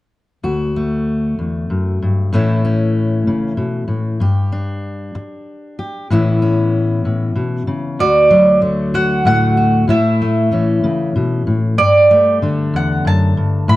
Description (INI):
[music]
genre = acoustic folk duo or small band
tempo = 63 BPM (dotted quarters)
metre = 6/8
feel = straight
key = D major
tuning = A4 = 443 Hz
[part]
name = fingerpicked steel-string acoustic guitar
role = accompaniment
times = 0.4-13.8 s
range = D2 to G4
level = -15 LUFS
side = left 2 dB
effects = none
[part]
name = mandolin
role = melody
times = 8.0-13.8 s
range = D5 to B5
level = -13 LUFS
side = right 2 dB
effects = none
[sound]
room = moderate large studio reverb, RT60 0.9 s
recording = dark, warm production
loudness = -13 LUFS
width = side -16 dB against mid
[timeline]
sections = 0.4-8.0 A section; 8.0-13.8 B section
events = none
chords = 0.4 D; 2.3 A; 4.2 G5; 6.1 Aadd9; 8.0 D; 9.9 A; 11.8 Gsus2